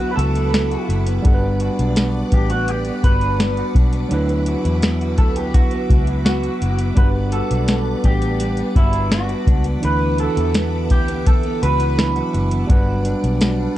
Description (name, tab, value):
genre	indie pop, bedroom pop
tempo	84 BPM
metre	4/4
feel	straight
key	D major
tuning	A4 = 440 Hz
part	electric guitar through a small old amp	melody	0.0-12.3 s	E4 to B4	-24 LUFS	right 1 dB	analog chorus, tape echo
part	electric guitar through a small old amp	accompaniment	0.0-13.8 s	G2 to F#4	-26 LUFS	equal	wide subtle chorus, vibrato effect
part	overdriven tine electric piano	accompaniment	0.0-13.8 s	E3 to F#5	-25 LUFS	right 2 dB	cassette tape
part	string machine, violins	sustained chords	0.0-13.8 s	B4 to D6	-33 LUFS	equal	ensemble chorus, plate reverb
part	vintage muted fingered electric bass	bass	0.0-13.7 s	F#1 to E2	-21 LUFS	equal	none
part	soft vintage rhythm box	drums	0.2-13.6 s	hi-hat, kick drum, snare drum	-17 LUFS	equal	none
room	light reverb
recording	dark, warm production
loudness	-15 LUFS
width	side -14 dB against mid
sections	0.0-13.8 A section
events	none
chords	0.0 D69; 1.3 Gmaj7; 4.1 D69; 7.0 Gmaj7; 9.8 D69; 12.7 Gmaj7